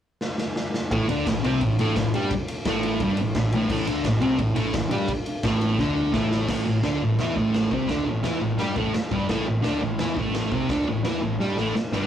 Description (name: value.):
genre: garage rock duo or trio.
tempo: 172 BPM.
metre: 4/4.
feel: straight.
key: unclear.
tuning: A4 = 440 Hz.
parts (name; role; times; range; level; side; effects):
raw garage drum kit; drums; 0.2-12.0 s; crash cymbal, kick drum, ride cymbal, snare drum; -28 LUFS; equal; none.
fuzz guitar; riff; 0.9-12.1 s; G2 to G4; -23 LUFS; equal; distortion.
growling picked electric bass; bass; 0.9-12.1 s; G1 to G2; -30 LUFS; equal; overdrive.
room: wet small room reverb, RT60 0.5 s.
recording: rough rehearsal-room recording, warm saturation.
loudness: -22 LUFS.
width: side -10 dB against mid.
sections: 0.9-6.5 A section; 6.5-12.1 B section.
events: drum fill 0.2-0.9, 5.8-6.5, 11.4-12.1.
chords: 0.0 N.C.; 0.9 Gsus24; 6.5 A5.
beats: 0.21 0.56 | 0.91 1.26 1.61 1.96 | 2.31 2.66 3.00 3.35 | 3.70 4.05 4.40 4.75 | 5.10 5.45 5.79 6.14 | 6.49 6.84 7.19 7.54 | 7.89 8.24 8.59 8.94 | 9.29 9.64 9.99 10.34 | 10.69 11.04 11.39 11.75.